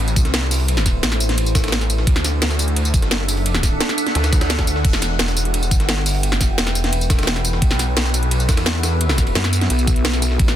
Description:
dark technical drum and bass; 173 BPM; 4/4; straight; A4 = 440 Hz
deep dark ambient pad; sustained chords; 0.0-10.6 s; A3 to G5; -26 LUFS; equal; chorus, built-in reverb, sidechain pumping
wide detuned saw bass; bass; 0.0-10.6 s; E1 to E2; -20 LUFS; equal; chorus, overdrive, sidechain pumping
drum and bass drum kit; drums; 0.1-10.6 s; crash cymbal, hi-hat, snare drum, tambourine; -21 LUFS; equal; soft clipping on snare
breakbeat sampler-style drum kit; drums; 0.2-10.6 s; hi-hat, ride cymbal, snare drum; -28 LUFS; right 1 dB; high-pass filter on cymbals, high-pass filter on snare, high-pass filter on hats, high-pass filter on room
electronic kick drum; drums; 0.2-10.5 s; -17 LUFS; equal
vowel-sweep wobble bass; bass; 4.2-4.7, 9.4-10.4 s; B1 to F#2; -18 LUFS; equal; chorus, tube saturation
little or no reverb; dense, heavily limited modern master; -16 LUFS; side -11 dB against mid
0.0-10.6 A section
0.0 Am; 2.1 D; 4.8 Em; 7.6 Bsus4

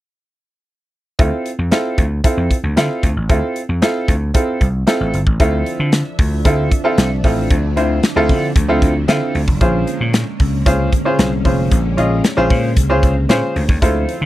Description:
early-eighties boogie funk; 114 BPM; 4/4; straight; A4 = 435 Hz
clear baby grand piano; accompaniment; 1.2-14.3 s; C4 to Eb5; -18 LUFS; right 1 dB
vintage slap bass; bass; 1.2-14.3 s; F1 to D3; -18 LUFS; equal
modern studio drum kit; drums; 1.2-14.2 s; hi-hat, kick drum, snare drum; -15 LUFS; equal
string machine, full ensemble; sustained chords; 5.4-14.3 s; D3 to E5; -24 LUFS; equal; phaser, ensemble chorus
little or no reverb; dry, close 1970s-style studio recording; -13 LUFS; side -15 dB against mid
1.2-5.4 A section; 5.4-14.3 B section
1.2 Dm9; 9.6 Bbm9

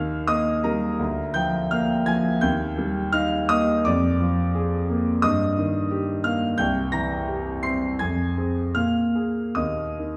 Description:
classical, romantic character piece for solo piano; 71-90 BPM; 2/4; rubato; Eb major; A4 = 440 Hz
clear concert grand piano; solo; 0.0-10.2 s; C2 to C7; -24 LUFS; equal
wet large studio reverb, RT60 1.4 s; heard from further back in the room; -23 LUFS; mono
0.0-10.2 A section
0.0 Eb; 1.0 Bb/D; 2.4 Eb; 3.8 Bb7/F; 5.2 Eb/G; 6.6 C7; 8.0 Fm; 8.8 Bb5; 9.6 N.C.

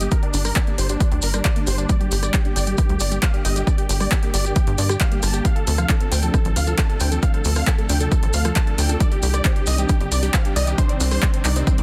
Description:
uplifting trance; 135 BPM; 4/4; straight; G minor; A4 = 440 Hz
big supersaw lead; melody; 0.0-11.8 s; C4 to A5; -30 LUFS; equal; sidechain pumping, low-pass filter
unison pluck; arpeggios; 0.0-11.8 s; F3 to G5; -33 LUFS; equal; analog chorus, sidechain pumping, delay
tight sequencer bass; bass; 0.0-11.8 s; G1 to G2; -23 LUFS; equal; sidechain pumping
punchy analog drum machine; drums; 0.0-11.8 s; handclaps, hi-hat, rim click; -29 LUFS; equal; overdrive, sidechain pumping on hats, sidechain pumping on cymbals
cabasa; percussion; 0.0-11.8 s; -34 LUFS; equal
electronic kick drum; drums; 0.1-11.8 s; -22 LUFS; equal; overdrive
little or no reverb; dense, heavily limited modern master; -20 LUFS; mono
0.0-11.8 A section
filter sweep on synth pluck 0.0-11.8
0.0 Gm; 5.5 Dm7; 9.0 Cmadd9

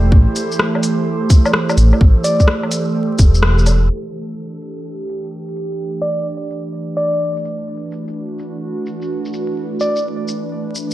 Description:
future garage; 127 BPM; 4/4; swing 66% on 16ths; A dorian; A4 = 440 Hz
warbly tape-like pad; sustained chords; 0.0-10.9 s; E3 to C5; -21 LUFS; right 2 dB; chorus, built-in reverb, sidechain pumping
dark detuned saw bass; bass; 0.0-3.9 s; E1 to A1; -12 LUFS; equal; sidechain pumping
wind-like tuned noise texture; texture; 0.0-3.9 s; A4; -31 LUFS; right 4 dB; built-in reverb
electronic kick drum; drums; 0.1-3.3 s; -9 LUFS; equal; studio reverb
organic electronic drum kit; drums; 0.4-10.9 s; hi-hat, rim click, shaker, woodblock; -20 LUFS; left 1 dB; low-pass filter on perc, studio reverb, low-pass filter on hats, low-pass filter on snare
soft struck synth lead; melody; 2.2-2.5, 6.0-10.1 s; D5; -22 LUFS; left 1 dB; chorus, tape echo
light reverb, digital ambience; dark, warm production, vinyl crackle, low-pass filter; -15 LUFS; side -15 dB against mid
0.0-3.9 A section; 3.9-10.9 B section
kick drops out 3.4-3.9; band accent 3.4; filter sweep on drum 3.9-10.9; filter sweep 3.9-10.9
0.0 Am7; 3.9 Asus2

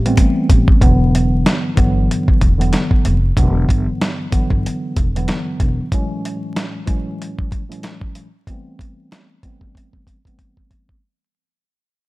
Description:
hip hop, boom-bap hip-hop; 94 BPM; 4/4; swing 57% on 16ths; E minor; A4 = 445 Hz
upright bass; bass; 0.0-5.8 s; E1 to A1; -18 LUFS; equal
mellow tine electric piano; accompaniment; 0.1-11.0 s; G2 to C#4; -21 LUFS; equal; medium stereo tremolo, cassette tape, high-pass filter, low-pass filter
dusty soul sampler-style drum kit; drums; 0.1-11.0 s; hi-hat, kick drum, snare drum; -16 LUFS; equal
small room ambience; dark, warm production, vinyl crackle; -14 LUFS; side -20 dB against mid
0.8-11.0 A section
drum fill 0.2-0.8, 9.7-11.0; fade-out 0.8-11.0; filter sweep on tine electric piano 0.8-11.0
0.0 Am9; 0.8 Em9; 5.9 F#m9; 8.5 Am9

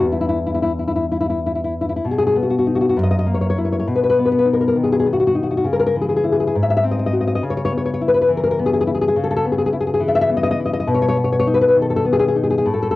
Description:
romantic piece for solo classical guitar; 57-71 BPM (dotted quarters); 6/8; rubato; B major; A4 = 440 Hz
nylon-string guitar; solo; 0.0-13.0 s; E2 to E5; -16 LUFS; left 2 dB; cassette tape
moderate studio reverb, RT60 0.6 s; home recording on cassette; -16 LUFS; side -16 dB against mid
0.0-2.1 A section; 2.1-13.0 B section
0.1 N.C.; 2.1 B; 3.0 F#7; 3.9 B; 5.7 C#m; 6.5 G#7; 7.4 C#m7; 10.9 B69

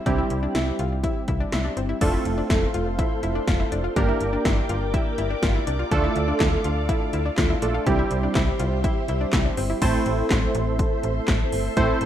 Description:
synth-pop; 123 BPM; 4/4; straight; A4 = 440 Hz
warm analog keys; accompaniment; 0.0-12.1 s; G3 to C5; -26 LUFS; right 2 dB; chorus
analog pluck; arpeggios; 0.0-9.8 s; C4 to F4; -30 LUFS; left 3 dB; chorus, ping-pong delay
slap-like FM bass; bass; 0.1-12.1 s; F1 to D2; -26 LUFS; equal
80s electronic pad drums; drums; 0.1-12.1 s; crash cymbal, handclaps, hi-hat, kick drum, snare drum; -24 LUFS; equal
string machine, violas; sustained chords; 2.0-12.1 s; G4 to D6; -30 LUFS; equal; ensemble chorus
light reverb, digital ambience; rough home demo mix; -20 LUFS; side -10 dB against mid
0.0-2.0 A section; 2.0-9.8 B section; 9.8-12.1 C section
0.0 C; 2.0 F; 4.0 Gm; 5.9 Dm; 7.9 C; 9.8 Am

